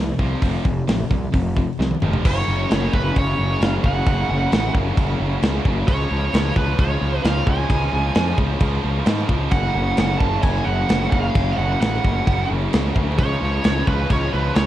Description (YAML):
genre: heavy metal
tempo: 132 BPM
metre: 4/4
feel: straight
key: unclear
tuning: A4 = 440 Hz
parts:
  - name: tight distorted guitar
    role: riff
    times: 0.0-14.7 s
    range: F2 to F3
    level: -28 LUFS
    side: left 8 dB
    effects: distortion
  - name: tight distorted guitar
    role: riff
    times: 0.0-14.7 s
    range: F2 to F3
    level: -29 LUFS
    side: right 9 dB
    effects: distortion
  - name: fuzz picked electric bass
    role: bass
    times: 0.0-14.7 s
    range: F1 to G#2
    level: -22 LUFS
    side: equal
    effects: overdrive
  - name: tight metal drum kit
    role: drums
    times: 0.2-14.7 s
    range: crash cymbal, hi-hat, kick drum, snare drum, toms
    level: -22 LUFS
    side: equal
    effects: vintage 12-bit sampler grit
  - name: high-gain lead guitar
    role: melody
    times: 2.3-14.7 s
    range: B4 to A5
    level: -25 LUFS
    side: right 3 dB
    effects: distortion, tape echo
room: light reverb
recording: dark, warm production, vinyl crackle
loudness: -17 LUFS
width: side -13 dB against mid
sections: 0.0-2.2 A section; 2.2-14.7 B section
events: drum fill 1.8-2.2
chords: 0.0 F5; 2.2 F#5; 5.9 C#; 9.5 F#5; 13.2 C#